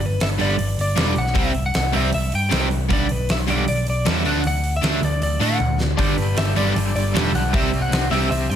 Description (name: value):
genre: hard rock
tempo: 156 BPM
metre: 4/4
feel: straight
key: unclear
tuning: A4 = 440 Hz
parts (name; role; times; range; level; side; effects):
- lightly driven lead guitar; melody; 0.0-8.6 s; B4 to G5; -26 LUFS; left 1 dB; none
- picked electric bass; bass; 0.0-8.6 s; E1 to A2; -22 LUFS; equal; none
- huge arena drum kit; drums; 0.0-8.6 s; hi-hat, kick drum, snare drum, toms; -24 LUFS; equal; none
- distorted electric guitar; riff; 0.4-8.3 s; G2 to D4; -27 LUFS; left 12 dB; overdrive
- distorted electric guitar; riff; 0.4-8.3 s; G2 to D4; -25 LUFS; right 10 dB; overdrive
- biting overdriven guitar; riff; 6.0-8.6 s; G2 to C4; -26 LUFS; left 1 dB; tremolo
room: light reverb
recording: none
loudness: -18 LUFS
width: side -9 dB against mid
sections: 0.0-8.6 A section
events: drum fill 5.6-6.0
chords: 0.0 G; 1.4 C5; 2.9 G/B; 4.3 D; 6.0 G5; 7.5 C5